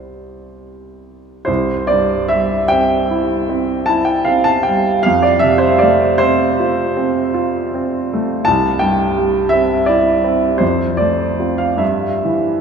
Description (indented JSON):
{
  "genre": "classical, romantic nocturne for solo piano",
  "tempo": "42-59 BPM (dotted quarters)",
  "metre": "9/8",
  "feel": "rubato",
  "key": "C major",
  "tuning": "A4 = 440 Hz",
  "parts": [
    { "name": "warm baby grand piano", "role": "solo", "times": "0.0-12.6 s", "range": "C2 to A5", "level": "-13 LUFS", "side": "right 1 dB", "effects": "none" }
  ],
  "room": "wet cathedral reverb, RT60 4.6 s",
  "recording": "recorded in a church or concert hall",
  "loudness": "-13 LUFS",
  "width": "side -6 dB against mid",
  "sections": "0.0-1.5 A section; 1.5-12.6 A section",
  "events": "none",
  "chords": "0.0 C; 5.0 F; 8.5 C; 10.6 F; 11.8 C/G (rootless)"
}